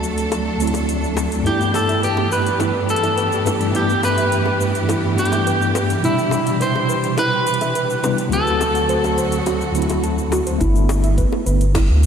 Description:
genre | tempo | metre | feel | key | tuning
sunset chillout | 105 BPM | 4/4 | straight | G major | A4 = 439 Hz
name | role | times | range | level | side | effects
mellow tine electric piano | accompaniment | 0.0-12.1 s | D2 to G4 | -21 LUFS | moving between left 3 dB and right 4 dB | medium stereo tremolo, auto-pan, analog delay
rich studio string section | sustained chords | 0.0-10.6 s | D3 to A4 | -25 LUFS | equal | none
smooth R&B drum kit | drums | 0.0-12.1 s | finger snaps, hi-hat, shaker | -32 LUFS | left 2 dB | small room ambience
bongos | percussion | 0.3-11.9 s | none | -30 LUFS | left 5 dB | none
electric guitar at the edge of break-up | melody | 1.5-10.0 s | E4 to C5 | -20 LUFS | equal | vibrato effect, analog delay
soft round pluck | arpeggios | 1.5-11.9 s | E4 to A5 | -27 LUFS | right 3 dB | chorus, analog delay
round analog bass | bass | 10.6-12.1 s | G1 to D2 | -15 LUFS | equal | none
electronic kick drum | drums | 10.6-11.9 s | none | -22 LUFS | equal | none
room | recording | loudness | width
wet lush hall reverb, RT60 2.9 s | dreamy mix soaked in reverb | -16 LUFS | side -7 dB against mid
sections
0.0-10.6 A section; 10.6-12.1 B section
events
none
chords
0.0 D7; 1.5 G6; 6.0 Cmaj7; 8.3 D7; 10.6 G6

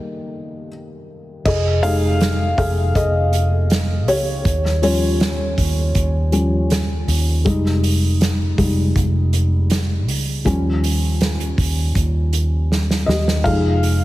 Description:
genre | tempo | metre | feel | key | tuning
pop ballad | 80 BPM | 4/4 | straight | F minor | A4 = 440 Hz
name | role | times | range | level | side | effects
felt-muted upright piano | accompaniment | 0.0-14.0 s | Eb3 to F5 | -21 LUFS | left 1 dB | none
vintage muted fingered electric bass | bass | 1.5-14.0 s | F1 to Eb2 | -18 LUFS | equal | none
unplugged drum kit | drums | 1.5-14.0 s | crash cymbal, hi-hat, kick drum, snare drum, splash cymbal | -22 LUFS | right 1 dB | none
room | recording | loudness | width
light reverb, small room ambience | heavily compressed radio sound | -16 LUFS | side -16 dB against mid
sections
0.0-1.5 A section; 1.5-14.0 B section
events
break 0.0-1.5; felt piano solo 0.0-1.5, 1.5-14.0; drum fill 12.7-13.5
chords
0.0 Cm7 (rootless); 1.5 Fm7; 4.5 Eb7; 7.5 Fm7; 10.5 Eb7; 13.5 Fm7

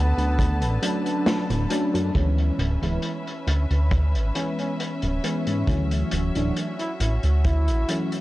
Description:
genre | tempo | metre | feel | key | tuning
vaporwave | 68 BPM | 4/4 | swing 53% on 16ths | unclear | A4 = 440 Hz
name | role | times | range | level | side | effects
breathy flugelhorn | melody | 0.0-8.1 s | B3 to E4 | -33 LUFS | equal | vintage 12-bit sampler grit, tape echo
warm studio string section | sustained chords | 0.0-8.2 s | D3 to A5 | -33 LUFS | left 1 dB | none
chorused synth bass | bass | 0.0-7.8 s | D1 to G#2 | -22 LUFS | equal | none
vintage drum kit | drums | 0.2-8.2 s | hi-hat, snare drum | -30 LUFS | left 1 dB | low-pass filter on hats, low-pass filter on snare, low-pass filter on room
kick drum | drums | 0.4-7.6 s | none | -26 LUFS | equal | none
FM electric piano with soft pad layer | accompaniment | 0.8-8.2 s | E3 to E4 | -27 LUFS | equal | analog chorus, tape echo
room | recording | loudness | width
studio reverb | cassette tape | -21 LUFS | side -17 dB against mid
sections
0.0-2.1 A section; 2.1-8.2 B section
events
kick drops out 1.3-2.1; band accent 1.3-1.7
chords
0.0 Bm7; 2.1 C#m7/D; 5.7 Dmaj9

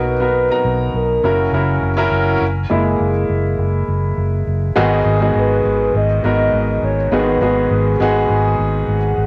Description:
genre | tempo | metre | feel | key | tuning
piano-driven pop | 102 BPM | 4/4 | straight | G# minor | A4 = 440 Hz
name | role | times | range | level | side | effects
hollow clarinet-like synth lead | melody | 0.0-1.8, 5.4-8.3 s | A#4 to D#5 | -21 LUFS | equal | chorus, cassette tape
clear baby grand piano | accompaniment | 0.0-9.3 s | G#2 to A#5 | -19 LUFS | equal | cassette tape
vintage muted fingered electric bass | bass | 0.0-9.3 s | F#1 to B1 | -21 LUFS | equal | none
room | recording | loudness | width
moderate spring reverb, RT60 1.3 s, small room ambience | home recording on cassette | -16 LUFS | mono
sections
0.0-2.4 A section; 2.4-4.8 B section; 4.8-9.3 C section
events
grand piano solo 2.4-4.8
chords
0.0 Bmaj7; 1.2 F#7; 4.8 G#m7

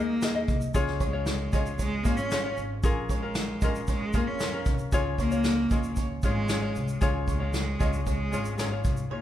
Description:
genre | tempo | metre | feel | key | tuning
acoustic pop | 115 BPM | 4/4 | straight | Db major | A4 = 442 Hz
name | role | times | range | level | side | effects
clear cello | melody | 0.0-9.2 s | Ab2 to Db4 | -31 LUFS | equal | none
ukulele | accompaniment | 0.0-9.2 s | Db4 to Eb5 | -32 LUFS | left 4 dB | none
bluegrass banjo | arpeggios | 0.0-9.2 s | Db5 to F5 | -40 LUFS | right 6 dB | none
upright bass | bass | 0.0-9.1 s | Ab1 to F2 | -33 LUFS | equal | none
soft brush drum kit | drums | 0.2-9.1 s | kick drum, shaker, snare drum | -29 LUFS | equal | none
room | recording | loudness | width
moderate large studio reverb, RT60 1.4 s | band playing live in one room | -25 LUFS | side -12 dB against mid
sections
0.0-9.1 A section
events
none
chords
0.0 Absus2/Eb; 0.7 Db; 2.8 Bbm7; 4.9 Db

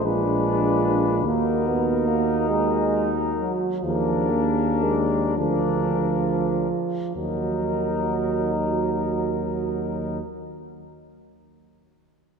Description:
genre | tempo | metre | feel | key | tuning
classical, hymn-like piece for brass band | 31-51 BPM (dotted quarters) | 6/8 | rubato | Eb minor | A4 = 437 Hz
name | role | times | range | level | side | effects
mellow cornet | melody | 0.0-10.2 s | Bb4 to Cb5 | -30 LUFS | left 10 dB | none
dark French horn section | second line | 0.0-10.2 s | F4 to Ab4 | -29 LUFS | right 8 dB | none
clear trombone section | accompaniment | 0.0-10.2 s | D4 to Eb4 | -29 LUFS | left 3 dB | none
warm euphonium | accompaniment | 0.0-10.2 s | F3 to Cb4 | -26 LUFS | right 3 dB | none
warm tuba | bass | 0.0-10.2 s | Bb1 to Eb2 | -27 LUFS | equal | none
room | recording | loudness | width
wet church reverb, RT60 3.0 s | none | -21 LUFS | side -5 dB against mid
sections
0.0-7.2 A section; 7.2-10.6 B section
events
slowing down 0.0-7.2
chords
0.0 Bb7b9; 1.2 Ebm; 3.9 Bb7/Eb; 7.2 Ebm

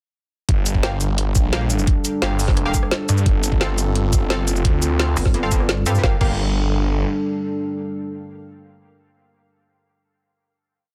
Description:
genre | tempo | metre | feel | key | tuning
dark technical drum and bass | 173 BPM | 4/4 | straight | G minor | A4 = 440 Hz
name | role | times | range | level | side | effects
dark analog pad | sustained chords | 0.5-9.5 s | G3 to A4 | -28 LUFS | equal | chorus, sidechain pumping
snarling distorted saw bass | bass | 0.5-7.0 s | G1 to G2 | -23 LUFS | equal | overdrive
drum and bass drum kit | drums | 0.5-6.3 s | crash cymbal, hi-hat, rim click, shaker, snare drum | -27 LUFS | equal | none
electronic kick drum | drums | 0.5-6.3 s | none | -21 LUFS | equal | none
band-passed chord stab | stabs | 0.8-9.6 s | Bb3 to F5 | -32 LUFS | equal | chorus, dub echo
metallic wobble bass | bass | 5.2-6.0 s | G1 to G2 | -23 LUFS | equal | chorus
room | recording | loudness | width
digital ambience | dense, heavily limited modern master | -20 LUFS | mono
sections
0.5-6.0 drop; 6.0-8.8 final chord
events
drop 0.5-6.0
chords
0.5 Gm; 3.3 F/G; 6.0 Gm7

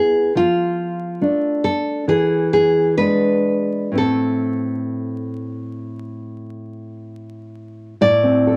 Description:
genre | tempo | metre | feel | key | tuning
romantic duo for nylon-string guitar and classical guitar | 56-71 BPM | 4/4 | rubato | A minor | A4 = 440 Hz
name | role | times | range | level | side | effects
nylon-string guitar | melody | 0.0-8.6 s | F4 to D5 | -20 LUFS | equal | none
nylon-string guitar | accompaniment | 0.0-8.6 s | A2 to A4 | -23 LUFS | equal | none
room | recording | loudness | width
moderate studio ambience, RT60 0.5 s | vinyl crackle | -19 LUFS | mono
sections
0.0-8.0 A section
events
none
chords
0.3 Dm/F; 2.1 E7; 4.0 Am

